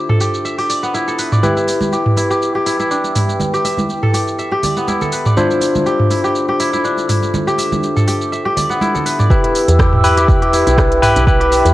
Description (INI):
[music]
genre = afro house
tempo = 122 BPM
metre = 4/4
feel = swing 55% on 16ths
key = E phrygian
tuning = A4 = 440 Hz
[part]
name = dark analog pad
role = sustained chords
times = 0.0-11.7 s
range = D4 to E6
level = -23 LUFS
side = right 2 dB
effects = wide subtle chorus, sidechain pumping, cassette tape
[part]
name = kora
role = arpeggios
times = 0.0-11.7 s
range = B3 to E5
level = -19 LUFS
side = equal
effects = sidechain pumping, cassette tape, analog delay
[part]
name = barky tine electric piano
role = stabs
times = 0.0-11.7 s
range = D4 to C5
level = -18 LUFS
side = left 2 dB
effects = sidechain pumping, cassette tape, analog delay
[part]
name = afro-pop drum kit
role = drums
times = 0.1-11.7 s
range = hi-hat, rim click, shaker, toms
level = -19 LUFS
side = right 1 dB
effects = low-pass filter on perc, cassette tape, low-pass filter on toms, low-pass filter on hats, low-pass filter on snare
[part]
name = congas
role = percussion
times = 1.4-9.3 s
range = none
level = -23 LUFS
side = right 2 dB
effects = none
[part]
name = electronic kick drum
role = drums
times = 9.3-11.4 s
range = none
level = -14 LUFS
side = equal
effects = cassette tape
[part]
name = woody FM bass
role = bass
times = 9.7-11.7 s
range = B1 to E2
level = -16 LUFS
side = equal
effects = sidechain pumping
[sound]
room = light reverb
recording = home recording on cassette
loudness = -13 LUFS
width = side -16 dB against mid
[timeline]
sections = 0.0-9.3 A section; 9.3-11.7 B section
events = drop 9.3-11.7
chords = 0.0 Dm7; 1.4 Em; 5.4 Dm7; 9.3 Em